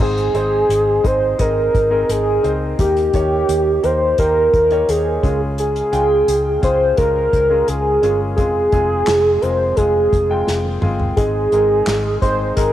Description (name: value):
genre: piano-driven pop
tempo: 86 BPM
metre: 4/4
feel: straight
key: Ab major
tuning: A4 = 440 Hz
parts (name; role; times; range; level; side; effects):
- warm velvety synth lead; melody; 0.0-12.7 s; G4 to C5; -16 LUFS; equal; chorus, cassette tape
- clear concert grand piano; accompaniment; 0.0-12.7 s; Ab2 to G5; -23 LUFS; left 1 dB; cassette tape
- vintage muted fingered electric bass; bass; 0.0-12.7 s; F1 to Eb2; -23 LUFS; equal; none
- unplugged drum kit; drums; 0.0-12.7 s; crash cymbal, handclaps, hi-hat, kick drum, snare drum, toms; -22 LUFS; equal; cassette tape
room: light reverb, small room reverb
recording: home recording on cassette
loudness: -14 LUFS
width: side -12 dB against mid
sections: 0.0-12.7 A section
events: drum fill 10.5-11.2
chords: 0.0 Ab; 2.8 Eb; 5.2 Db; 8.4 Fm; 11.2 Ab